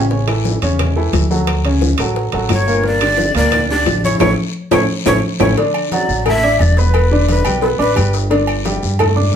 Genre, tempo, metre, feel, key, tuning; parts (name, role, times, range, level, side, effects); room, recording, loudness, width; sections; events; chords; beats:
latin, salsa; 176 BPM; 4/4; straight; D major; A4 = 439 Hz
warm upright piano; accompaniment; 0.0-9.4 s; Bb2 to D6; -18 LUFS; right 1 dB
upright bass; bass; 0.0-9.3 s; E1 to G2; -17 LUFS; equal
bongos and cowbell; percussion; 0.1-9.2 s; -22 LUFS; left 6 dB
congas; percussion; 0.1-9.3 s; -24 LUFS; left 1 dB
guiro; percussion; 0.1-9.4 s; -30 LUFS; left 7 dB
claves; percussion; 0.3-9.2 s; -29 LUFS; left 6 dB
timbales and agogo bells; percussion; 0.3-9.2 s; -24 LUFS; right 6 dB
breathy bright shakuhachi; melody; 2.5-8.1 s; A4 to E5; -18 LUFS; left 1 dB; plate reverb
wet studio reverb, RT60 0.6 s; heard from further back in the room; -13 LUFS; side -8 dB against mid
0.0-5.6 A section; 5.6-9.4 B section
band accent 4.2-5.6; drum fill 5.1-5.6
0.1 A; 1.5 Dmaj7; 2.8 Gmadd9; 4.2 A; 5.6 D; 6.9 Em7; 8.3 Gsus2
| 0.11 0.45 0.79 1.14 | 1.48 1.82 2.16 2.50 | 2.84 3.19 3.53 3.87 | 4.21 4.55 4.89 5.24 | 5.58 5.92 6.26 6.60 | 6.95 7.29 7.63 7.97 | 8.31 8.66 9.00 9.34